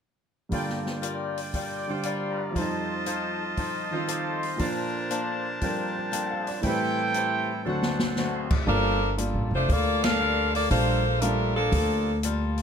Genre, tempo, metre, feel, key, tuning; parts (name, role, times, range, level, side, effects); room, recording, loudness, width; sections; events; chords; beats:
jazz, big band swing; 118 BPM; 4/4; swing 68% on 8ths; G minor; A4 = 439 Hz
picked swing-style acoustic guitar; accompaniment; 0.5-12.6 s; D3 to D5; -34 LUFS; left 6 dB
warm baby grand piano; accompaniment; 0.5-11.5 s; D2 to A5; -31 LUFS; right 1 dB
bright trumpet section; stabs; 0.5-8.8 s; D4 to Eb6; -30 LUFS; right 2 dB
open jazz drum kit; drums; 0.5-12.6 s; crash cymbal, hi-hat, kick drum, ride cymbal, snare drum; -30 LUFS; equal
bright saxophone section; melody; 8.7-12.2 s; F3 to F5; -24 LUFS; left 1 dB
upright bass; bass; 8.7-12.6 s; F1 to D2; -26 LUFS; equal
light reverb; close, detailed microphones; -24 LUFS; side -7 dB against mid
0.5-8.7 A section; 8.7-12.6 B section
drum fill 7.7-8.2; band accent 9.9
0.5 Gm7; 2.6 F7; 4.6 Bbmaj9; 6.6 Am7; 7.7 D7; 8.7 Gm9
| 0.52 1.03 1.54 2.05 | 2.56 3.07 3.58 4.09 | 4.60 5.11 5.62 6.12 | 6.63 7.14 7.65 8.16 | 8.67 9.18 9.69 10.19 | 10.70 11.21 11.72 12.23